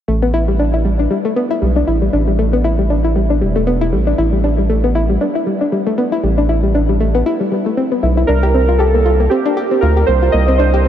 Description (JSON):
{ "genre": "IDM", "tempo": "117 BPM", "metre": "4/4", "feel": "swing 56% on 16ths", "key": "unclear", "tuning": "A4 = 440 Hz", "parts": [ { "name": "soft round pluck", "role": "arpeggios", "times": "0.1-10.9 s", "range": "G3 to G4", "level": "-16 LUFS", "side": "left 2 dB", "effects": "chorus, analog delay" }, { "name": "round analog bass", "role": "bass", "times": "0.1-10.9 s", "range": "E1 to D2", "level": "-15 LUFS", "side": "right 1 dB", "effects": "none" }, { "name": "warbly lo-fi synth keys", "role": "melody", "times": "8.3-10.9 s", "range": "G4 to Eb5", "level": "-15 LUFS", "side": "right 3 dB", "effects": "chorus, analog delay" } ], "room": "moderate huge ambient reverb, RT60 8.1 s", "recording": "dreamy mix soaked in reverb", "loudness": "-12 LUFS", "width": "side -10 dB against mid", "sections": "0.1-10.9 A section", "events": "none", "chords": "0.1 A7sus2; 8.3 C7sus2", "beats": "| 0.08 0.59 1.11 1.62 | 2.13 2.65 3.16 3.67 | 4.18 4.70 5.21 5.72 | 6.23 6.75 7.26 7.77 | 8.29 8.80 9.31 9.82 | 10.34 10.85" }